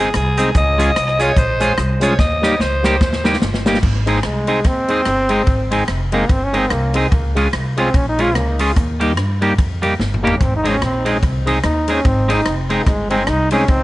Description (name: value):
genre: ska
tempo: 146 BPM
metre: 4/4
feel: swing 59% on 8ths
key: Ab major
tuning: A4 = 440 Hz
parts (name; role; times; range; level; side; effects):
- raspy alto saxophone; melody; 0.0-3.3 s; Ab4 to Eb5; -19 LUFS; equal; tape echo, plate reverb
- clean electric guitar; accompaniment; 0.0-13.6 s; G3 to Ab4; -20 LUFS; right 2 dB; none
- tonewheel organ; stabs; 0.0-13.7 s; G3 to Ab4; -24 LUFS; left 2 dB; slow rotary speaker, plate reverb
- upright bass; bass; 0.0-13.8 s; F1 to G2; -20 LUFS; equal; none
- swinging big-band drum kit; drums; 0.1-13.8 s; crash cymbal, hi-hat, kick drum, ride cymbal, rim click, snare drum, toms; -20 LUFS; equal; tape echo
- cabasa; percussion; 0.1-3.7 s; none; -40 LUFS; left 3 dB; none
- bright trombone; melody; 4.2-13.8 s; Ab3 to F4; -20 LUFS; equal; tape echo
room: light reverb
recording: vinyl crackle, nothing above 10.5 kHz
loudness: -14 LUFS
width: side -17 dB against mid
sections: 0.0-3.8 A section; 3.8-13.8 A section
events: alto saxophone solo 0.0-3.8; drum fill 2.2-3.8, 10.0-10.4; trombone solo 3.8-13.8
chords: 0.0 Ab; 0.6 Db; 2.2 Eb; 3.8 Ab; 7.1 Db; 8.8 Eb; 10.4 Ab